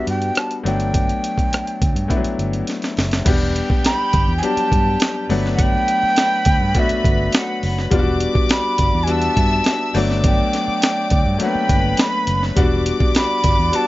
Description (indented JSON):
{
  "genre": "lush 1970s-style soul",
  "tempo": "103 BPM",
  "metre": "4/4",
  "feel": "straight",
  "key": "G major",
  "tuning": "A4 = 440 Hz",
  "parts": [
    { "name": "breathy jazz flute", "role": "melody", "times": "0.0-13.9 s", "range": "E5 to B5", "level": "-21 LUFS", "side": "right 1 dB", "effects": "none" },
    { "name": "clear grand piano", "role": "accompaniment", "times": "0.0-13.9 s", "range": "F#3 to G4", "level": "-22 LUFS", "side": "left 3 dB", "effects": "none" },
    { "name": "vintage muted fingered electric bass", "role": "bass", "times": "0.1-13.7 s", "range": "E1 to G2", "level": "-21 LUFS", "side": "equal", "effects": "none" },
    { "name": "breakbeat sampler-style drum kit", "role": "drums", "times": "0.1-13.9 s", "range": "crash cymbal, hi-hat, kick drum, rim click, snare drum", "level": "-19 LUFS", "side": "equal", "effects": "none" },
    { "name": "warm chamber violin section", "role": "second line", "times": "3.3-13.9 s", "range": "G4 to E6", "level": "-26 LUFS", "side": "left 1 dB", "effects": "tape echo" }
  ],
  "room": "light reverb",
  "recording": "nothing above 7.6 kHz",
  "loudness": "-15 LUFS",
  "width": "side -17 dB against mid",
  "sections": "0.0-3.3 A section; 3.3-13.9 B section",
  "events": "drum fill 2.7-3.3",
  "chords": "0.0 Em7 (rootless); 0.6 Gmaj7; 3.3 Em7; 5.3 Gmaj7; 7.9 Em7; 9.9 Gmaj7; 12.6 Em7"
}